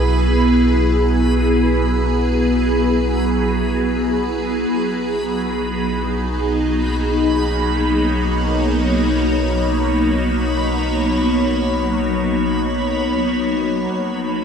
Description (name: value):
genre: ambient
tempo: free time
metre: none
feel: none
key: B major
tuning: A4 = 439 Hz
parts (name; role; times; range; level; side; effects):
- evolving wavetable pad; sustained chords; 0.0-14.4 s; F#3 to C#5; -17 LUFS; equal; ensemble chorus, built-in reverb, phaser
- warm sub bass; bass; 0.0-14.4 s; B1; -22 LUFS; equal; none
- backwards swelling texture; texture; 0.0-14.4 s; B5; -28 LUFS; right 3 dB; built-in reverb
room: wet concert hall reverb, RT60 2.0 s, digital ambience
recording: dark, warm production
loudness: -16 LUFS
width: side -7 dB against mid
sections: 0.0-14.4 A section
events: fade-in on synth texture 0.0-14.4; fade-out on sub bass 0.0-14.4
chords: 0.0 Eadd9/B; 4.7 Bmaj9; 13.9 Esus2/B (rootless)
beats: free time